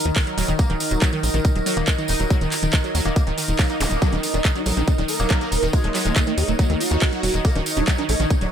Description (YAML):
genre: psychedelic trance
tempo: 140 BPM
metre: 4/4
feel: straight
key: Eb minor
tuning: A4 = 440 Hz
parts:
  - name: overtone-sweeping drone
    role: sustained chords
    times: 0.0-8.5 s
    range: Eb4 to Db5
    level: -30 LUFS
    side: right 1 dB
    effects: chorus, built-in reverb, sidechain pumping
  - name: tambourine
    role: percussion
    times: 0.0-8.5 s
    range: none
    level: -32 LUFS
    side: right 5 dB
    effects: none
  - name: warbly tape-like pad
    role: texture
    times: 0.0-8.5 s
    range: Eb4 to Eb5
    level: -28 LUFS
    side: right 1 dB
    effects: chorus, built-in reverb, sidechain pumping
  - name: wide unison pluck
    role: riff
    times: 0.1-8.5 s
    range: Db3 to Eb4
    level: -27 LUFS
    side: equal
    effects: auto-pan, sidechain pumping, digital delay
  - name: tight sequencer bass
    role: bass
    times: 0.1-8.5 s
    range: Eb1 to Eb2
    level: -23 LUFS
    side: equal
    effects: none
  - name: drum and bass drum kit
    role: drums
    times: 0.1-8.5 s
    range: handclaps, hi-hat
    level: -27 LUFS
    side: equal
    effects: none
  - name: electronic kick drum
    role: drums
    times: 0.2-8.4 s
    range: none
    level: -19 LUFS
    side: equal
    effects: none
  - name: metallic wobble bass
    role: second line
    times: 0.6-7.6 s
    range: Ab3 to Eb4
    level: -35 LUFS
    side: left 4 dB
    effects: distortion, chorus, sidechain pumping, high-pass filter, dub echo
  - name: zap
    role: sound effects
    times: 3.8-3.9 s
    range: none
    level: -31 LUFS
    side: equal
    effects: none
  - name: swarming rave lead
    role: melody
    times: 4.0-8.5 s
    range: Bb3 to Bb4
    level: -26 LUFS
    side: right 2 dB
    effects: chorus, phaser, sidechain pumping, digital delay
room: light reverb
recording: none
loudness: -18 LUFS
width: side -8 dB against mid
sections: 0.0-8.5 A section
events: none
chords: 0.0 Eb5